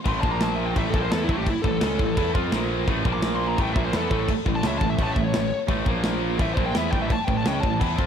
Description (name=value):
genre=heavy metal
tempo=170 BPM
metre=4/4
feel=straight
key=unclear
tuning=A4 = 440 Hz
part: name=heavy high-gain guitar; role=riff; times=0.0-8.1 s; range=A2 to F4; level=-29 LUFS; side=left 11 dB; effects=distortion, slapback echo
part: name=high-gain lead guitar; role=melody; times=0.1-7.8 s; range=E4 to D6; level=-29 LUFS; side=left 1 dB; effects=distortion, slapback echo
part: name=tight distorted guitar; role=riff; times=0.1-8.1 s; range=A2 to F4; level=-28 LUFS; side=right 10 dB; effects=distortion, slapback echo
part: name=fuzz picked electric bass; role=bass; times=0.1-8.1 s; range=A1 to F2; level=-28 LUFS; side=left 1 dB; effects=overdrive
part: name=tight metal drum kit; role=drums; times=0.1-8.1 s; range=crash cymbal, kick drum, snare drum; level=-26 LUFS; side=equal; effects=none
room=light reverb, studio ambience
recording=none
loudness=-21 LUFS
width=side -8 dB against mid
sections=0.0-8.1 A section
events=lead electric guitar solo 0.0-8.1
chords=0.2 Bb5; 0.8 A; 2.5 Bb5; 2.9 A5; 3.1 Bb5; 3.6 A; 5.9 Bb5; 6.4 A